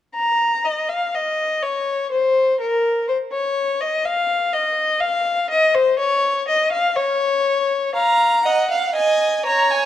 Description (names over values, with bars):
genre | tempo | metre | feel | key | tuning
classical, baroque-style fugue for string quartet | 61 BPM | 4/4 | straight | Bb minor | A4 = 440 Hz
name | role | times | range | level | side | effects
rich violin | melody | 0.2-9.9 s | Bb4 to Bb5 | -18 LUFS | left 2 dB | none
rich violin | second line | 8.0-9.9 s | Db5 to Bb5 | -17 LUFS | right 2 dB | none
room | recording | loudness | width
light reverb | dark, warm production | -17 LUFS | side -11 dB against mid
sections
0.1-8.0 A section; 8.0-9.9 B section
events
none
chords
0.1 N.C.; 8.0 Bbm